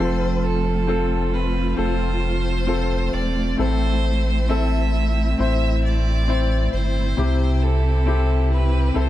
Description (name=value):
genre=pop ballad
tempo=67 BPM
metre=4/4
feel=straight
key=A minor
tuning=A4 = 440 Hz
part: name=bright violin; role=melody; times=0.0-9.1 s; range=A4 to E5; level=-28 LUFS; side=right 1 dB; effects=none
part: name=clear concert grand piano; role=accompaniment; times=0.0-9.1 s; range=A2 to C5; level=-26 LUFS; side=left 5 dB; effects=none
part: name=rich symphonic string section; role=sustained chords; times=0.0-9.1 s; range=C3 to A4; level=-29 LUFS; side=right 2 dB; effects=none
part: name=twelve-string electric guitar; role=arpeggios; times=0.0-9.1 s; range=A2 to A4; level=-30 LUFS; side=right 3 dB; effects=spring reverb
part: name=warm sub bass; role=bass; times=0.0-9.1 s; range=E1 to C2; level=-20 LUFS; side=equal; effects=none
room=light reverb, small room reverb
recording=dark, warm production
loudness=-18 LUFS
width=side -14 dB against mid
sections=0.0-9.1 A section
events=none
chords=0.0 F; 3.6 Am; 7.2 C